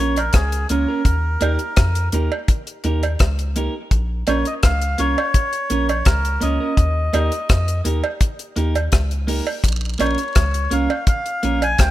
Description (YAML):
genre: roots reggae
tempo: 84 BPM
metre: 4/4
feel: straight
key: Bb dorian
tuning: A4 = 443 Hz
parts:
  - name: melodica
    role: melody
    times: 0.0-11.9 s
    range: Ab4 to Ab5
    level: -24 LUFS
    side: left 1 dB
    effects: tape echo
  - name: clean electric guitar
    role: accompaniment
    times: 0.0-11.6 s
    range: Bb3 to Bb4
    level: -25 LUFS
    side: right 3 dB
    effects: tape echo
  - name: soft dub sub bass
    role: bass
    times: 0.0-11.9 s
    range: Bb1 to F2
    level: -21 LUFS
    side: equal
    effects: none
  - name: deep reggae drum kit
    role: drums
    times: 0.2-11.9 s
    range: hi-hat, kick drum, rim click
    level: -18 LUFS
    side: equal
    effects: none
  - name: cowbell and jawbone-type rattle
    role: percussion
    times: 0.2-11.8 s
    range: none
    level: -26 LUFS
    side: right 6 dB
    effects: none
room: small room ambience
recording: rough home demo mix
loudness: -17 LUFS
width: side -15 dB against mid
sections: 0.0-11.9 A section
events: none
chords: 0.0 Bbm; 1.1 Eb; 3.9 Bbm; 6.8 Eb; 9.6 Bbm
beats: 0.33 | 1.05 1.77 2.48 3.20 | 3.91 4.63 5.34 6.06 | 6.78 7.49 8.21 8.92 | 9.64 10.35 11.07 11.79